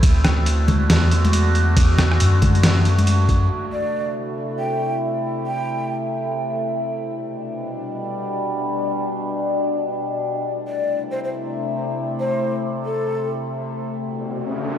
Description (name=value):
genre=deep dubstep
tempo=138 BPM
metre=4/4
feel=swing 60% on 16ths, half-time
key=A dorian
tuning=A4 = 443 Hz
part: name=overtone-sweeping drone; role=sustained chords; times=0.0-14.8 s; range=B2 to F#4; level=-24 LUFS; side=left 1 dB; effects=chorus, built-in reverb
part: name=soft dub sub bass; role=bass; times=0.0-3.5 s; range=D2 to F#2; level=-17 LUFS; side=equal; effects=tube saturation
part: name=electronic kick drum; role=drums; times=0.0-3.4 s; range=none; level=-17 LUFS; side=equal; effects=none
part: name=trip hop sampler-style drum kit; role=drums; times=0.0-3.4 s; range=hi-hat, ride cymbal, rim click, snare drum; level=-22 LUFS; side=equal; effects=low-pass filter on hats, low-pass filter on cymbals, low-pass filter on snare
part: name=congas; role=percussion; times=0.2-3.1 s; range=none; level=-24 LUFS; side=left 1 dB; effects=dub echo
part: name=breathy ney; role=melody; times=3.7-5.9, 10.7-13.3 s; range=A4 to G5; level=-28 LUFS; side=equal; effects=dub echo
part: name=riser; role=sound effects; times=14.1-14.8 s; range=none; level=-28 LUFS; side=left 1 dB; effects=none
room=light reverb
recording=played on a big sound system in a bare room, large studio reverb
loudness=-19 LUFS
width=side -10 dB against mid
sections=0.0-3.5 A section; 3.5-14.8 B section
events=drop 0.0-3.5; riser 14.1-14.8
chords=0.0 D; 3.5 Am; 7.0 G; 10.5 Am; 13.9 D